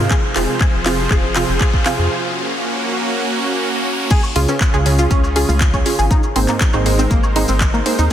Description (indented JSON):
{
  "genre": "progressive house",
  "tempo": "120 BPM",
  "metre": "4/4",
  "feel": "straight",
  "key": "Db major",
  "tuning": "A4 = 440 Hz",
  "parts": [
    { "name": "supersaw pad", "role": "sustained chords", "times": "0.0-8.1 s", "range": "Db3 to C5", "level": "-23 LUFS", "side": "right 1 dB", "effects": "sidechain pumping" },
    { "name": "tight sequenced synth", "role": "arpeggios", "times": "0.0-8.1 s", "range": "Bb3 to Ab4", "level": "-23 LUFS", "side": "equal", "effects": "chorus, sidechain pumping, dub echo" },
    { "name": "wide unison pluck", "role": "stabs", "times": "0.0-7.9 s", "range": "Ab2 to C5", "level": "-21 LUFS", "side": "right 2 dB", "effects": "sidechain pumping, dub echo" },
    { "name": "round analog bass", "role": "bass", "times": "0.0-8.1 s", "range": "F1 to F2", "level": "-19 LUFS", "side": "equal", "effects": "sidechain pumping" },
    { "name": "riser", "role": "sound effects", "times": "0.2-4.1 s", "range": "none", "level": "-25 LUFS", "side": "equal", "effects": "none" },
    { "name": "drifting glass-harmonics texture", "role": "texture", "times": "0.0-2.1 s", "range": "F5 to F6", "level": "-36 LUFS", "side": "equal", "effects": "none" },
    { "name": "electronic kick drum", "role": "drums", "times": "0.1-8.1 s", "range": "none", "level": "-16 LUFS", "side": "equal", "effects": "small room reverb" },
    { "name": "house drum kit", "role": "drums", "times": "0.1-8.0 s", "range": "crash cymbal, handclaps, hi-hat", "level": "-23 LUFS", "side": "left 1 dB", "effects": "high-pass filter on hats, small room reverb, soft clipping on snare, high-pass filter on snare, high-pass filter on cymbals" },
    { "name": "dusty soul sampler-style drum kit", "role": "drums", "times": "4.1-8.1 s", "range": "hi-hat, snare drum", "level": "-35 LUFS", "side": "left 1 dB", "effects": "none" },
    { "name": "maracas", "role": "percussion", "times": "4.1-8.1 s", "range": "none", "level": "-31 LUFS", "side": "left 3 dB", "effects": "none" },
    { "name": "woodblock, cowbell and congas", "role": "percussion", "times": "4.2-7.8 s", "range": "none", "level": "-30 LUFS", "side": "equal", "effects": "sidechain pumping on perc" }
  ],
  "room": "light reverb",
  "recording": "dense, heavily limited modern master",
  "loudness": "-14 LUFS",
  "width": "side -10 dB against mid",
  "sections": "0.0-4.1 A section; 4.1-8.1 B section",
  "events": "build-up 0.0-4.1; drum fill 0.0-2.1; filter sweep on synth pluck 0.0-4.1; riser 0.2-4.1; break 2.1-4.1; drop 4.1-8.1",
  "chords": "0.1 Fm; 2.1 Gb; 4.1 Db; 6.1 Abadd9"
}